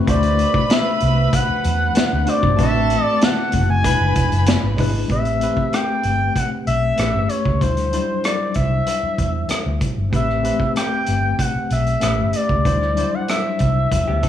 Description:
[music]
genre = lush 1970s-style soul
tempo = 95 BPM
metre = 4/4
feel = straight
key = A dorian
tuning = A4 = 440 Hz
[part]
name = tine electric piano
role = accompaniment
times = 0.0-14.3 s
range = F#3 to C5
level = -24 LUFS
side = left 3 dB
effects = overdrive, fast stereo tremolo
[part]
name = vibraphone with soft mallets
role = texture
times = 0.0-7.1 s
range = A3 to A4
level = -32 LUFS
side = right 4 dB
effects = none
[part]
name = expressive synth lead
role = melody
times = 0.1-14.3 s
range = C5 to G#5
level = -21 LUFS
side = left 2 dB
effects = chorus
[part]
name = warm chamber violin section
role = second line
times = 0.1-4.8 s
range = A4 to B5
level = -26 LUFS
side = right 2 dB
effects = none
[part]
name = vintage muted fingered electric bass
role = bass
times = 0.1-14.2 s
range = E1 to E2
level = -20 LUFS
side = equal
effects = none
[part]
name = vintage drum kit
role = drums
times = 0.1-14.3 s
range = hi-hat, kick drum, rim click, snare drum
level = -22 LUFS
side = right 1 dB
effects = none
[part]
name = electric guitar through a small old amp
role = riff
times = 14.1-14.3 s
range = B3 to A4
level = -31 LUFS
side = right 3 dB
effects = spring reverb
[sound]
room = light reverb, studio ambience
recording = none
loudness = -16 LUFS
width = side -10 dB against mid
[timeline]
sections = 0.0-5.1 A section; 5.1-14.3 B section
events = none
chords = 0.1 D7; 2.6 Am69; 3.8 E7; 5.1 Am9; 7.0 A9; 7.6 D9sus4; 10.1 Am9; 12.0 A9; 12.7 D9sus4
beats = | 0.07 0.70 1.33 1.96 | 2.59 3.21 3.84 4.47 | 5.10 5.72 6.35 6.98 | 7.61 8.24 8.87 9.50 | 10.13 10.76 11.39 12.02 | 12.65 13.28 13.91

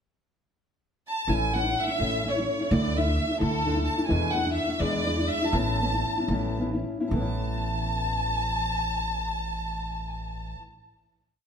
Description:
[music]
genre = mexican folk, mariachi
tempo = 70-86 BPM (dotted quarters)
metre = 6/8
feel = straight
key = A major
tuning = A4 = 445 Hz
[part]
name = rich chamber violin section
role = melody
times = 1.1-10.5 s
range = A4 to A5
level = -28 LUFS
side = equal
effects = none
[part]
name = nylon-string guitar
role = accompaniment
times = 1.3-10.7 s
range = E2 to E4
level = -30 LUFS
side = left 2 dB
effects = none
[part]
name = upright bass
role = bass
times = 1.3-10.5 s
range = A1 to E2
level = -29 LUFS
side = right 1 dB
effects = none
[sound]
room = wet stone room reverb, RT60 1.2 s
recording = band playing live in one room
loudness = -24 LUFS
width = side -7 dB against mid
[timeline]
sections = 0.0-1.3 pickup bar; 1.3-7.1 A section; 7.1-10.5 final chord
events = slowing down 4.1-7.1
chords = 0.0 N.C.; 1.3 A; 2.7 Dsus2; 4.1 E7sus4; 4.8 E7; 5.5 Aadd9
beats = 0.57 | 1.28 2.00 | 2.70 3.40 | 4.10 4.81 | 5.53 6.30 | 7.12 7.97 | 8.80 9.65

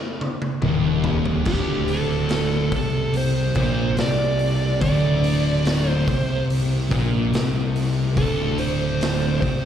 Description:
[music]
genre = stoner and doom metal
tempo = 72 BPM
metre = 4/4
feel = straight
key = unclear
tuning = A4 = 439 Hz
[part]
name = raw garage drum kit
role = drums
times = 0.2-9.6 s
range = crash cymbal, hi-hat, kick drum, snare drum, toms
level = -26 LUFS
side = equal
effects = none
[part]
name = thick fuzz guitar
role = riff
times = 0.6-9.7 s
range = D2 to C3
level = -24 LUFS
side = left 6 dB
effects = distortion
[part]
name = thick fuzz guitar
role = riff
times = 0.6-9.7 s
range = D2 to C3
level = -24 LUFS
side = right 7 dB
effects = distortion
[part]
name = fuzz fingered electric bass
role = bass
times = 0.6-9.7 s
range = D1 to C2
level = -27 LUFS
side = equal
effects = overdrive
[part]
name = fuzz lead guitar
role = melody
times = 1.5-9.7 s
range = G4 to D5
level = -26 LUFS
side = equal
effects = distortion, ping-pong delay
[sound]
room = studio reverb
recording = live gig heard through the venue's PA, recital hall reverb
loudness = -19 LUFS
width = side -9 dB against mid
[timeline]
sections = 0.0-1.5 A section; 1.5-9.7 B section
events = drum fill 0.0-1.5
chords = none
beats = 0.63 | 1.47 2.31 3.15 3.98 | 4.82 5.66 6.50 7.33 | 8.17 9.01

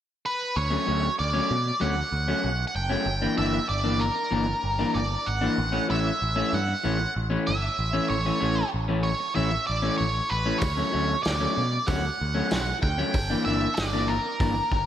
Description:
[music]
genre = indie rock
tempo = 95 BPM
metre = 4/4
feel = straight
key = D major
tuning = A4 = 439 Hz
[part]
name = octave-fuzz lead guitar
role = melody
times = 0.3-14.9 s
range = Bb4 to G5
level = -27 LUFS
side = right 2 dB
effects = distortion
[part]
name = growling picked electric bass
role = bass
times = 0.6-14.9 s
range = F#1 to B2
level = -29 LUFS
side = equal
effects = overdrive
[part]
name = electric guitar through a small old amp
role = riff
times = 0.7-14.6 s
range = E3 to D4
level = -28 LUFS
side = left 2 dB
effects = spring reverb
[part]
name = loose indie drum kit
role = drums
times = 10.6-14.9 s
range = hi-hat, kick drum, snare drum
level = -29 LUFS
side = equal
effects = gated reverb
[sound]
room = moderate lush hall reverb, RT60 2.3 s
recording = bright 1980s-style digital production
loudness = -23 LUFS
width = side -10 dB against mid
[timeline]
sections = 0.6-14.9 A section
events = none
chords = 0.0 N.C.; 0.6 Dmaj7; 3.1 Gm6; 5.6 A; 10.6 Dmaj7; 13.1 Gm6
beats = | 0.56 1.19 1.81 2.44 | 3.07 3.70 4.33 4.96 | 5.58 6.21 6.84 7.47 | 8.10 8.73 9.36 9.99 | 10.62 11.25 11.88 12.51 | 13.14 13.77 14.40

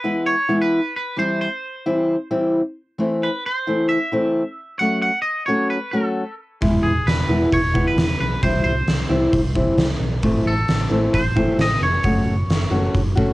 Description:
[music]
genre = quiet-loud alternative rock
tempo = 133 BPM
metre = 4/4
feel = straight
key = unclear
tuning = A4 = 440 Hz
[part]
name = twangy electric guitar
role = melody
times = 0.0-13.3 s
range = G#4 to F#5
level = -23 LUFS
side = equal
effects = cassette tape
[part]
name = fingerpicked steel-string acoustic guitar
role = arpeggios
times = 0.0-13.3 s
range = E3 to F#4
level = -20 LUFS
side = left 1 dB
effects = cassette tape
[part]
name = picked electric bass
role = bass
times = 6.6-13.3 s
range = E1 to C2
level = -23 LUFS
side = equal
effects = none
[part]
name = oversized low-tuned drum kit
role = drums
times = 6.6-13.3 s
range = hi-hat, kick drum, snare drum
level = -22 LUFS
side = equal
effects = none
[sound]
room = light reverb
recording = home recording on cassette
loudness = -17 LUFS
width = side -18 dB against mid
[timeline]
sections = 0.0-13.3 A section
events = none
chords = 0.0 E; 1.2 C; 3.0 Am; 4.8 F#m; 6.6 E; 8.4 C; 10.2 Am; 12.0 F#m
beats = 0.27 0.72 | 1.18 1.63 2.08 2.54 | 2.99 3.44 3.90 4.35 | 4.80 5.25 5.70 6.16 | 6.61 7.06 7.51 7.97 | 8.42 8.87 9.32 9.78 | 10.23 10.68 11.13 11.58 | 12.04 12.49 12.94

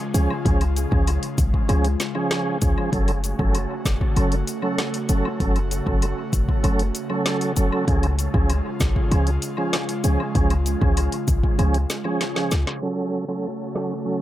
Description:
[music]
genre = dancehall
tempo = 97 BPM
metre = 4/4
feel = straight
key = F# harmonic minor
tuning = A4 = 441 Hz
[part]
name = airy breathy pad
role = sustained chords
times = 0.0-14.2 s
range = C#3 to F#4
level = -29 LUFS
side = left 1 dB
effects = chorus, sidechain pumping
[part]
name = tonewheel organ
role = accompaniment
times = 0.1-14.2 s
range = E#3 to A4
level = -26 LUFS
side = right 2 dB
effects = chorus vibrato, stopped rotary speaker, dub echo
[part]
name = short 808-style bass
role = bass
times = 0.1-12.7 s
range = E#1 to C#2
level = -21 LUFS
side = equal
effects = none
[part]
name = afro-pop drum kit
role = drums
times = 0.1-13.9 s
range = hi-hat, kick drum, rim click, snare drum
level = -24 LUFS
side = equal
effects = none
[part]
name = cabasa and woodblock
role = percussion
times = 0.1-12.8 s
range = none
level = -38 LUFS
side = left 6 dB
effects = dub echo
[sound]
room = light reverb, digital ambience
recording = echo-heavy mix, low-pass filter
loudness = -20 LUFS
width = side -14 dB against mid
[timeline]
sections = 0.0-12.8 A section; 12.8-14.2 B section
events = drum fill 12.2-12.8; filter sweep 12.8-14.2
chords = 0.0 C#; 2.9 F#m; 7.9 C#; 12.8 F#m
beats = | 0.45 1.07 1.69 2.31 | 2.93 3.55 4.17 4.78 | 5.40 6.02 6.64 7.26 | 7.88 8.49 9.11 9.73 | 10.35 10.97 11.59 12.21 | 12.82 13.44 14.06

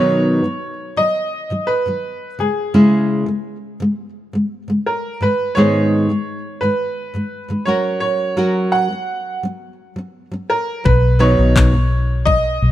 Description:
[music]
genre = acoustic pop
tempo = 85 BPM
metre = 4/4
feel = straight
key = B major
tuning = A4 = 440 Hz
[part]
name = bright upright piano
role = melody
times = 0.0-12.7 s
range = G#4 to F#5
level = -20 LUFS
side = right 2 dB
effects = none
[part]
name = nylon-string guitar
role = accompaniment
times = 0.0-12.6 s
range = G#2 to B4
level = -17 LUFS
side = equal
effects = none
[part]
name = vintage muted fingered electric bass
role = bass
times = 10.9-12.7 s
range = B1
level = -14 LUFS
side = equal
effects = none
[part]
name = pop drum kit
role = drums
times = 10.9-12.4 s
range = handclaps, kick drum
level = -16 LUFS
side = left 3 dB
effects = overdrive
[sound]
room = light reverb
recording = none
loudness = -15 LUFS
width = side -13 dB against mid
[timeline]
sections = 0.0-12.7 A section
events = none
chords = 0.0 B; 2.4 C#m; 5.2 G#m; 7.7 F#; 10.9 B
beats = 0.28 0.98 1.69 | 2.40 3.10 3.81 4.51 | 5.22 5.92 6.63 7.33 | 8.04 8.74 9.45 10.15 | 10.86 11.56 12.27

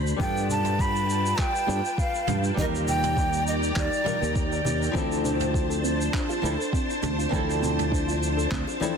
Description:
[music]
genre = sunset chillout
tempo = 101 BPM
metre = 4/4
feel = straight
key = D dorian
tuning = A4 = 440 Hz
[part]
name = soft string machine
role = sustained chords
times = 0.0-9.0 s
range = Eb3 to B5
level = -31 LUFS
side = equal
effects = ensemble chorus
[part]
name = sustaining fretless electric bass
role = bass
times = 0.0-8.6 s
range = D2 to G2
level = -28 LUFS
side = equal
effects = ensemble chorus
[part]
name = jazz brush drum kit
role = drums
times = 0.1-8.9 s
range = handclaps, shaker, toms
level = -35 LUFS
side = right 1 dB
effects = none
[part]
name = breathy jazz flute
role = melody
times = 0.2-4.3 s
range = D5 to B5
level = -28 LUFS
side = right 1 dB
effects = digital delay
[part]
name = flamenco guitar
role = accompaniment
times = 0.2-8.9 s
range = F3 to Bb4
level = -31 LUFS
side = moving between left 7 dB and right 4 dB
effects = auto-pan, low-pass filter, ping-pong delay
[part]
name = electronic kick drum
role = drums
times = 0.2-8.6 s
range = none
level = -28 LUFS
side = equal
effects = none
[part]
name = congas and bongos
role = percussion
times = 0.2-8.9 s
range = none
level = -36 LUFS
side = left 4 dB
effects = none
[part]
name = soft round pluck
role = arpeggios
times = 4.9-9.0 s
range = C4 to A4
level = -32 LUFS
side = right 3 dB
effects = analog chorus, ping-pong delay
[sound]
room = light reverb, studio reverb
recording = dense, heavily limited modern master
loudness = -23 LUFS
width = side -6 dB against mid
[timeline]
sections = 0.0-9.0 A section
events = none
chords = 0.2 G9; 2.6 Ebmaj7; 4.9 Dm7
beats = | 0.20 0.79 1.39 1.98 | 2.57 3.17 3.76 4.36 | 4.95 5.54 6.14 6.73 | 7.33 7.92 8.51

